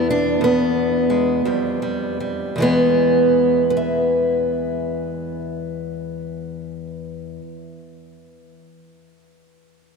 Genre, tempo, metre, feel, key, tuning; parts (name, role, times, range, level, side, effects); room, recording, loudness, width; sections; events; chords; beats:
acoustic country blues, solo or duo; 53-61 BPM (dotted quarters); 12/8; straight; E major; A4 = 441 Hz
fingerpicked steel-string acoustic guitar; solo; 0.0-8.6 s; E2 to E5; -18 LUFS; equal
wet cathedral reverb, RT60 5.5 s; recorded in a church or concert hall; -17 LUFS; side -4 dB against mid
0.0-2.5 A section; 2.5-7.1 B section
slowing down 0.0-2.5; stop 0.0-1.4
0.0 E7; 1.4 Fsus2; 2.5 E
0.41 1.45 | 2.55 3.69 4.83 5.96